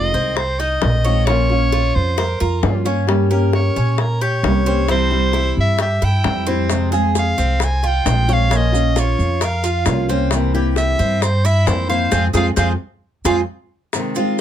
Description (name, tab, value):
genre	latin, Cuban son and guajira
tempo	133 BPM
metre	4/4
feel	straight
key	F minor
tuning	A4 = 440 Hz
part	edgy soprano saxophone	melody	0.0-13.4 s	Bb4 to Ab5	-21 LUFS	equal	none
part	nylon-string guitar	accompaniment	0.0-14.4 s	C3 to G4	-21 LUFS	left 2 dB	none
part	Cuban tres	arpeggios	0.0-14.4 s	C4 to Db5	-24 LUFS	right 4 dB	none
part	upright bass	bass	0.0-13.4 s	Bb1 to Bb2	-18 LUFS	right 1 dB	none
part	bongos	percussion	0.1-14.2 s	none	-24 LUFS	left 8 dB	none
part	maracas	percussion	6.7-14.4 s	none	-30 LUFS	right 9 dB	none
room	little or no reverb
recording	close, detailed microphones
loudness	-15 LUFS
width	side -10 dB against mid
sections	0.0-13.9 A section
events	band accent 12.1-13.9; drum fill 13.7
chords	0.0 Fm7; 1.3 Bbm; 3.1 Gdim; 4.9 C; 6.7 Fm; 8.5 Bbm; 10.3 C7; 12.1 Fm